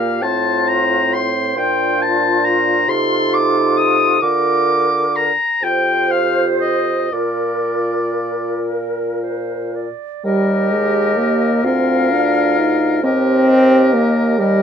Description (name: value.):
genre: classical, slow romantic movement for wind quintet.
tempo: 37-46 BPM (dotted quarters).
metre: 6/8.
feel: rubato.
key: Bb major, Eb major from 10.2 s.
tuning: A4 = 439 Hz.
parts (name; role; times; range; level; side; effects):
mellow silver concert flute; melody; 0.0-14.6 s; F4 to F5; -22 LUFS; left 6 dB; none.
clear oboe; second line; 0.0-14.6 s; Bb4 to Eb6; -18 LUFS; left 3 dB; none.
mellow French horn; accompaniment; 0.0-14.6 s; G3 to G4; -19 LUFS; equal; none.
warm clarinet; accompaniment; 0.0-14.6 s; F4 to D5; -24 LUFS; right 12 dB; none.
mellow bassoon; bass; 0.0-14.6 s; D2 to D3; -22 LUFS; right 3 dB; none.
room: moderate studio reverb, RT60 0.5 s.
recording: minimal, uncompressed stereo recording.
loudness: -14 LUFS.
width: side -8 dB against mid.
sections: 0.0-10.2 A section; 10.2-14.6 B section.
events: none.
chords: 0.2 F/A; 1.6 Bb; 2.9 Adim/C; 4.2 Bb/D; 5.6 F5; 7.1 Bb; 10.2 Eb; 11.7 Bb/D; 13.0 Eb.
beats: 0.23 | 1.57 2.89 | 4.23 5.63 | 7.13 8.72 | 10.25 11.65 | 13.04 14.39.